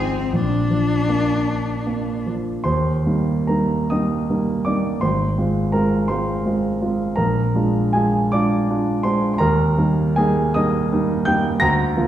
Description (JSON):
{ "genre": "classical, romantic duo for cello and grand piano", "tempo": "45-58 BPM (dotted quarters)", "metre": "6/8", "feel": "rubato", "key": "Eb major", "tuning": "A4 = 439 Hz", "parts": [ { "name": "clear cello", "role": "melody", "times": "0.0-2.3 s", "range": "C4 to D4", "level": "-23 LUFS", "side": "left 2 dB", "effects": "none" }, { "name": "warm grand piano", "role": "accompaniment", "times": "0.0-12.1 s", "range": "Ab1 to Bb6", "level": "-18 LUFS", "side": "right 1 dB", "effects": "none" } ], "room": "wet recital hall reverb, RT60 1.5 s", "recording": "heard from further back in the room", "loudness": "-17 LUFS", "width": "side -11 dB against mid", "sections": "0.0-2.7 A section; 2.7-12.1 B section", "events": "none", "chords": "0.3 Bb; 2.7 Eb; 5.0 Fm/Ab; 7.2 Bb7; 9.4 Eb" }